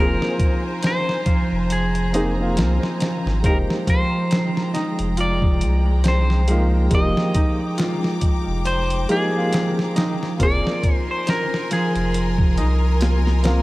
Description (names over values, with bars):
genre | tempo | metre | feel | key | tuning
trip hop | 69 BPM | 4/4 | swing 57% on 16ths | F dorian | A4 = 440 Hz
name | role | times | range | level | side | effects
clean electric guitar | melody | 0.0-13.4 s | Ab4 to Eb5 | -26 LUFS | equal | vintage 12-bit sampler grit, tape echo
warm upright piano | accompaniment | 0.0-13.6 s | Ab3 to Ab4 | -26 LUFS | equal | tremolo
clear symphonic string section | sustained chords | 0.0-13.6 s | Ab3 to D6 | -30 LUFS | left 1 dB | none
Celtic harp | arpeggios | 0.0-13.6 s | F3 to C5 | -24 LUFS | right 1 dB | vintage 12-bit sampler grit, tape echo
warm sub bass | bass | 0.0-13.6 s | F1 to C2 | -20 LUFS | equal | none
dusty soul sampler-style drum kit | drums | 0.2-13.6 s | hi-hat, kick drum, snare drum | -22 LUFS | equal | none
room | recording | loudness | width
small room ambience | vinyl crackle | -17 LUFS | side -19 dB against mid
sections
0.0-13.6 A section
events
none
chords
0.0 Abadd9/F; 3.4 Fm11; 10.4 Abadd9/F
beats
0.83 1.70 2.57 | 3.44 4.31 5.18 6.05 | 6.92 7.79 8.66 9.53 | 10.40 11.27 12.14 13.01